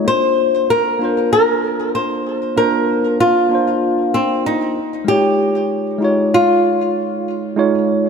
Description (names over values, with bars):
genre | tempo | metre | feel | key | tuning
sunset chillout | 96 BPM | 4/4 | straight | unclear | A4 = 445 Hz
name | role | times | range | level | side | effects
tine electric piano | accompaniment | 0.0-8.1 s | Ab3 to Db5 | -18 LUFS | moving between left 4 dB and right 4 dB | auto-pan, digital delay
flamenco guitar | melody | 0.1-8.1 s | C4 to C5 | -16 LUFS | left 1 dB | digital delay
room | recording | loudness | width
moderate lush hall reverb, RT60 2.1 s | none | -14 LUFS | side -6 dB against mid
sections
0.0-8.1 A section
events
none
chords
0.1 C9sus4; 4.8 Eb9sus4